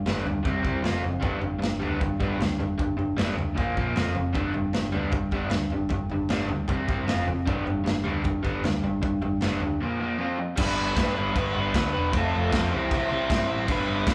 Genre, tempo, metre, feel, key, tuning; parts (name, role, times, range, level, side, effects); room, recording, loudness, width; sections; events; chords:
garage rock duo or trio; 154 BPM; 4/4; straight; G mixolydian; A4 = 442 Hz
crunchy overdriven guitar; riff; 0.0-14.1 s; Bb2 to C5; -29 LUFS; equal
hollow-body short-scale picked electric bass; bass; 0.0-14.1 s; E1 to G2; -35 LUFS; equal; overdrive
raw garage drum kit; drums; 0.1-14.1 s; crash cymbal, kick drum, snare drum, toms; -31 LUFS; equal
moderate large studio reverb, RT60 1.2 s; band playing live in one room, cassette tape; -26 LUFS; mono
0.0-10.6 A section; 10.6-14.1 B section
0.5 C5; 0.8 F5; 1.2 G; 3.6 Bb5; 4.0 F5; 4.4 G; 6.7 C5; 7.1 F5; 7.5 G; 9.8 Bb5; 10.2 F5; 10.6 G; 12.1 F; 12.7 C